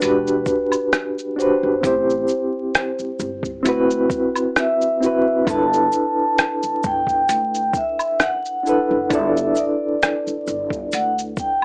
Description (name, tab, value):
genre	lo-fi hip hop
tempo	66 BPM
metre	4/4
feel	swing 55% on 16ths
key	G major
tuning	A4 = 440 Hz
part	vibraphone with soft mallets	melody	0.0-11.6 s	B4 to A5	-24 LUFS	equal	none
part	reed electric piano	accompaniment	0.0-11.6 s	C4 to D5	-23 LUFS	equal	fast tremolo, cassette tape
part	upright bass	bass	0.0-11.3 s	E1 to D2	-32 LUFS	equal	none
part	lo-fi sampler-style drum kit	drums	0.0-11.6 s	hi-hat, kick drum, rim click, shaker	-24 LUFS	equal	none
part	maracas and woodblock	percussion	0.0-11.6 s	none	-32 LUFS	equal	none
room	light reverb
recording	vinyl crackle, small speaker sound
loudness	-20 LUFS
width	mono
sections	0.0-11.6 A section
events	none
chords	0.0 Em9; 1.8 Am7; 3.7 D13; 5.5 G6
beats	0.01 0.92 | 1.83 2.74 3.65 4.56 | 5.47 6.38 7.29 8.20 | 9.11 10.02 10.92